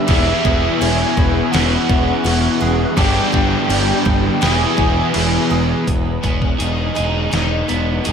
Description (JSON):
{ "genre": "rock, shoegaze and dream pop", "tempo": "83 BPM", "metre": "4/4", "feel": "straight", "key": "E major", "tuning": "A4 = 440 Hz", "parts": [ { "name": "mellow horn-like synth lead", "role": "melody", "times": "0.0-5.5 s", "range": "E5 to G#5", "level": "-24 LUFS", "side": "equal", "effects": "chorus, tape echo" }, { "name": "deep dark ambient pad", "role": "sustained chords", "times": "0.0-5.9 s", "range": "G#4 to C#6", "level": "-29 LUFS", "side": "right 2 dB", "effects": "chorus, built-in reverb" }, { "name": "picked twelve-string acoustic guitar", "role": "arpeggios", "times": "0.0-8.1 s", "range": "E3 to G#4", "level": "-27 LUFS", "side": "right 4 dB", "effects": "ensemble chorus, tape echo" }, { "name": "cranked stack guitar", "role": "riff", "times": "0.0-5.8 s", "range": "E3 to G#4", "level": "-21 LUFS", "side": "left 1 dB", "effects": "overdrive, spring reverb" }, { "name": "crunchy overdriven guitar", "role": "riff", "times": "0.0-8.1 s", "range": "E2 to G#4", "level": "-22 LUFS", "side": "right 10 dB", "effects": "reverse reverb" }, { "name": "overdriven semi-hollow guitar", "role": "riff", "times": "0.0-8.1 s", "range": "E3 to G#4", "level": "-22 LUFS", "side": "left 13 dB", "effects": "ensemble chorus" }, { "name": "growling picked electric bass", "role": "bass", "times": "0.1-8.1 s", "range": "E1 to G1", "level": "-20 LUFS", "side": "equal", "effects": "overdrive" }, { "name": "detuned 8-bit digital drum machine", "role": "drums", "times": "0.1-8.1 s", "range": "crash cymbal, hi-hat, kick drum, snare drum", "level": "-20 LUFS", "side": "equal", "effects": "none" } ], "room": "light reverb, digital ambience", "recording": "none", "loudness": "-14 LUFS", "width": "side -7 dB against mid", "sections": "0.0-5.9 A section; 5.9-8.1 B section", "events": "kick and snare drop out 5.1-5.9", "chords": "0.1 E6; 3.0 G6; 4.4 Emaj7", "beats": "| 0.08 0.80 1.52 2.25 | 2.97 3.69 4.41 5.14 | 5.86 6.59 7.31 8.04" }